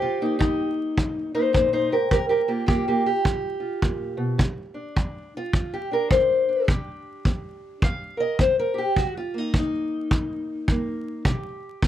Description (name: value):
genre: acoustic country blues, solo or duo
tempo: 105 BPM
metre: 4/4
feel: swing 62% on 8ths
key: C minor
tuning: A4 = 441 Hz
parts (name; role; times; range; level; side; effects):
- fingerpicked steel-string acoustic guitar; melody; 0.0-11.9 s; G2 to F5; -23 LUFS; left 1 dB; none
- kick drum; drums; 0.4-11.9 s; none; -23 LUFS; equal; none
room: light reverb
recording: close, detailed microphones, vinyl crackle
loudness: -21 LUFS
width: side -11 dB against mid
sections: 0.0-4.4 A section; 4.4-11.9 B section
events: steel-string acoustic guitar solo 4.4-11.9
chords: 0.0 Cm7; 2.1 Gm7; 4.4 Cm9